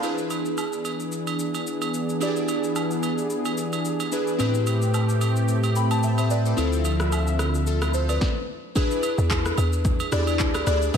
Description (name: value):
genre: amapiano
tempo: 110 BPM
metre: 4/4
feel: swing 55% on 16ths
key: unclear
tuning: A4 = 440 Hz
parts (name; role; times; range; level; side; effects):
- glassy digital keys; accompaniment; 0.0-11.0 s; C4 to B5; -27 LUFS; left 1 dB; chorus
- warm analog pad; sustained chords; 0.0-8.2 s; D3 to E5; -28 LUFS; equal; chorus, sidechain pumping
- deep house drum kit; drums; 0.0-11.0 s; handclaps, kick drum, rim click, shaker, snare drum; -29 LUFS; equal; overdrive
- agogo bells and woodblock; percussion; 0.0-11.0 s; none; -33 LUFS; right 6 dB; none
- sub bass with octave; bass; 4.4-8.2 s; D2 to A2; -23 LUFS; equal; none
- hollow log drum bass; bass; 9.2-11.0 s; D2 to E2; -24 LUFS; equal; none
room: light reverb, digital ambience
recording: dense, heavily limited modern master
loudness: -21 LUFS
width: side -7 dB against mid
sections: 0.0-8.8 A section; 8.8-11.0 B section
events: stop 8.2-8.8; drop 8.8-11.0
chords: 0.0 E7; 4.4 Am9; 6.6 Dm9; 8.8 E7